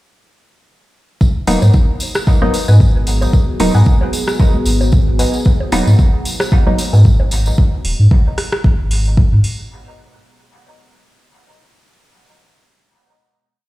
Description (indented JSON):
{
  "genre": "dub techno",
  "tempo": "113 BPM",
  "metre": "4/4",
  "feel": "swing 55% on 16ths",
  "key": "G# minor",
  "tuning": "A4 = 441 Hz",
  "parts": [
    { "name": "deep dark ambient pad", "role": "sustained chords", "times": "2.0-7.5 s", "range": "B3 to G#4", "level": "-25 LUFS", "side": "equal", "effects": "chorus, built-in reverb, sidechain pumping" },
    { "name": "pure sine sub bass", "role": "bass", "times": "1.2-9.4 s", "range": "D#1 to G#2", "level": "-12 LUFS", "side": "equal", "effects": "sidechain pumping" },
    { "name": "electronic kick drum", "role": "drums", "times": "1.2-9.3 s", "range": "none", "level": "-12 LUFS", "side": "equal", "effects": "none" },
    { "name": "tambourine", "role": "percussion", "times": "1.2-7.6 s", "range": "none", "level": "-28 LUFS", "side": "left 1 dB", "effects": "none" },
    { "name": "filtered dub chord stab", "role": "stabs", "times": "1.5-6.8 s", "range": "F#3 to D#4", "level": "-20 LUFS", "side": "equal", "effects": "chorus, phaser, sidechain pumping, dub echo" },
    { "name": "soft vintage rhythm box", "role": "drums", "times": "1.5-9.6 s", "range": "hi-hat, rim click", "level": "-23 LUFS", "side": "equal", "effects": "none" },
    { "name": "congas and bongos", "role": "percussion", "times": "1.5-7.3 s", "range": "none", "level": "-29 LUFS", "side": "right 1 dB", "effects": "sidechain pumping on perc, dub echo" },
    { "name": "filtered dub chord stab", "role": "riff", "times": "2.7-7.1 s", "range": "B4 to G#5", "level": "-27 LUFS", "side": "left 2 dB", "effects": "phaser, wide subtle chorus, cassette tape, sidechain pumping, dub echo" }
  ],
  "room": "little or no reverb",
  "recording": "played on a big sound system in a bare room, stone room reverb",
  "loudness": "-11 LUFS",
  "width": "side -17 dB against mid",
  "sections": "1.2-9.7 groove",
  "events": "none",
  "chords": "1.2 G#m7"
}